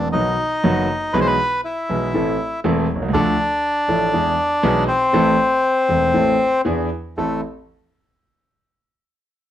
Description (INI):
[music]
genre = tango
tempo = 120 BPM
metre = 4/4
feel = rubato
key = A harmonic minor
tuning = A4 = 440 Hz
[part]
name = bandoneon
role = melody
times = 0.0-7.4 s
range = A3 to C5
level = -18 LUFS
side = left 1 dB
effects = none
[part]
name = warm concert grand piano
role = accompaniment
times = 0.0-7.4 s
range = E1 to A4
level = -19 LUFS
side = equal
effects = none
[sound]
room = moderate studio reverb, RT60 0.7 s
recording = none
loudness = -16 LUFS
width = side -11 dB against mid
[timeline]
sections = 0.0-7.2 A section; 7.2-9.2 B section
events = none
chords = 0.1 B; 1.1 E/B; 2.1 Am; 3.1 Dm; 4.1 E; 5.1 Am; 6.7 E7; 7.2 Am